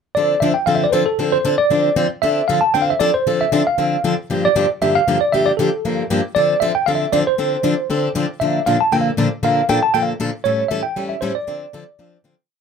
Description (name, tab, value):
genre	jazz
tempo	233 BPM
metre	4/4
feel	swing 55% on 8ths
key	D minor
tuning	A4 = 439 Hz
part	tine electric piano	melody	0.1-12.2 s	A4 to A5	-17 LUFS	right 2 dB	fast stereo tremolo
part	picked plugged-in swing-style acoustic guitar	accompaniment	0.2-12.3 s	G2 to A4	-19 LUFS	left 3 dB	none
room	light reverb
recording	close, detailed microphones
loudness	-15 LUFS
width	side -6 dB against mid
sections	0.2-12.5 head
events	fade-out 10.0-12.5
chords	0.2 Dm7; 4.3 Gm9; 6.4 Dm7; 8.4 Bbmaj7; 10.4 A7; 11.5 Dm7